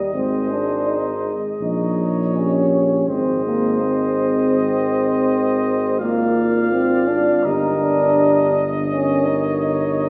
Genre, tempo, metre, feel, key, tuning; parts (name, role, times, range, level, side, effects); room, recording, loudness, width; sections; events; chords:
classical, brass quintet; 82 BPM; 4/4; rubato; Eb major; A4 = 440 Hz
warm trumpet; melody; 0.0-10.1 s; Eb5 to F5; -30 LUFS; equal
clear trombone; accompaniment; 0.0-10.1 s; G3 to Eb4; -22 LUFS; equal
dark French horn; accompaniment; 0.0-10.1 s; F4 to Bb4; -26 LUFS; equal
warm flugelhorn; second line; 0.1-10.1 s; Bb4 to D5; -30 LUFS; equal
warm tuba; bass; 0.1-10.1 s; G1 to Bb1; -25 LUFS; equal
wet recital hall reverb, RT60 1.6 s; recorded in a church or concert hall; -19 LUFS; mono
0.0-10.1 A section
0.1 Ab; 1.6 Eb7/Bb; 3.1 Ab; 6.0 Bb7/Ab; 7.4 Eb/G; 8.9 Eb7/G